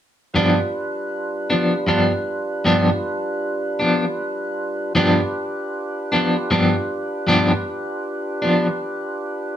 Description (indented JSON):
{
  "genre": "blues",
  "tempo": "52 BPM (dotted quarters)",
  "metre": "12/8",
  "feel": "straight",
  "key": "unclear",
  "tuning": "A4 = 441 Hz",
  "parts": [
    { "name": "electric guitar at the edge of break-up", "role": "accompaniment", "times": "0.3-8.7 s", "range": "G2 to D4", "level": "-16 LUFS", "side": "equal", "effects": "tremolo" },
    { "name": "tonewheel organ", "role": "sustained chords", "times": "0.3-9.6 s", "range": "G3 to B4", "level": "-24 LUFS", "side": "right 1 dB", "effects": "slow rotary speaker" }
  ],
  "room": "wet studio reverb, RT60 0.6 s",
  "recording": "band playing live in one room",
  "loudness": "-18 LUFS",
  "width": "side -10 dB against mid",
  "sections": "0.3-9.6 A section",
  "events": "none",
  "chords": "0.3 G7"
}